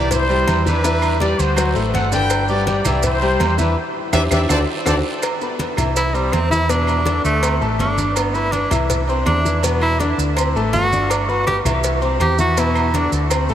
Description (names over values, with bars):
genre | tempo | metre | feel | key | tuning
latin, salsa | 164 BPM | 4/4 | straight | unclear | A4 = 437 Hz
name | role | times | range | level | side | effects
mellow trumpet section | melody | 0.0-5.0 s | D4 to G5 | -22 LUFS | equal | diffuse ambient delay
bright concert grand piano | accompaniment | 0.0-13.5 s | B2 to D6 | -22 LUFS | left 4 dB | none
hollow-body short-scale fingered electric bass | bass | 0.0-13.5 s | G1 to E2 | -20 LUFS | equal | none
congas | percussion | 0.1-13.5 s | none | -29 LUFS | equal | none
cowbell | percussion | 0.1-13.5 s | none | -28 LUFS | left 3 dB | none
guiro | percussion | 0.1-4.9 s | none | -36 LUFS | right 6 dB | none
maracas | percussion | 0.1-13.5 s | none | -31 LUFS | right 8 dB | none
agogo bells and timbales | percussion | 0.3-13.5 s | none | -27 LUFS | right 7 dB | none
claves | percussion | 0.5-13.5 s | none | -36 LUFS | right 4 dB | none
clear tenor saxophone | melody | 6.0-13.2 s | G3 to G4 | -20 LUFS | right 1 dB | diffuse ambient delay
room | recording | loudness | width
moderate huge ambient reverb, RT60 8.1 s | dreamy mix soaked in reverb | -15 LUFS | side -10 dB against mid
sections
0.0-5.2 A section; 5.2-13.5 B section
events
drum fill 3.8-5.2; band accent 3.8-5.2; tenor saxophone solo 5.2-13.5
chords
0.1 C; 0.8 Em7; 1.6 D7; 2.3 G; 3.0 C; 3.8 Em7; 4.5 D7; 5.2 Cmaj7; 6.0 C; 6.7 E5; 7.4 D5; 8.2 G; 8.9 C; 9.6 E5; 10.4 D7; 11.1 G; 11.8 C; 12.6 E5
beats
0.11 0.47 | 0.84 1.21 1.57 1.94 | 2.30 2.67 3.04 3.40 | 3.77 4.13 4.50 4.87 | 5.23 5.60 5.96 6.33 | 6.70 7.06 7.43 7.80 | 8.16 8.53 8.90 9.27 | 9.63 10.00 10.37 10.73 | 11.10 11.47 11.84 12.20 | 12.57 12.94 13.31